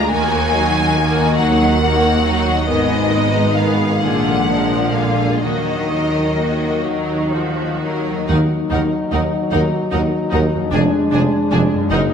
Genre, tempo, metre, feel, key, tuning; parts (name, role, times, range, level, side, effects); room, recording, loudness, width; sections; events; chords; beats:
classical, slow romantic movement for symphony orchestra; 40-51 BPM (dotted quarters); 6/8; rubato; Eb minor; A4 = 440 Hz
warm symphonic violin section; melody; 0.0-12.0 s; Eb5 to Bb5; -22 LUFS; left 4 dB
rich symphonic violin section; second line; 0.0-12.0 s; Cb4 to Cb5; -26 LUFS; left 1 dB
rich symphonic viola section; accompaniment; 0.0-12.0 s; D3 to Eb4; -23 LUFS; right 1 dB
mellow French horn section; sustained chords; 0.0-12.1 s; Gb3 to Eb4; -21 LUFS; left 2 dB
concert harp; arpeggios; 0.0-12.1 s; F2 to F5; -26 LUFS; left 7 dB
clear symphonic double bass section; bass; 0.1-12.0 s; F1 to Eb2; -23 LUFS; right 3 dB
rich symphonic cello section; bass; 0.1-12.0 s; Eb2 to Eb3; -22 LUFS; right 3 dB
clear tuba; bass; 8.3-12.1 s; F1 to Eb2; -22 LUFS; right 3 dB
wet scoring stage reverb, RT60 1.8 s; lossy compression artefacts; -14 LUFS; side -7 dB against mid
0.0-8.3 A section; 8.3-12.1 B section
0.1 Ebm; 2.7 Abm; 4.0 Bb7; 5.4 Ebm; 10.7 Ddim/F
| 0.11 1.38 | 2.68 4.02 | 5.43 6.86 | 8.29 9.53 | 10.73 11.91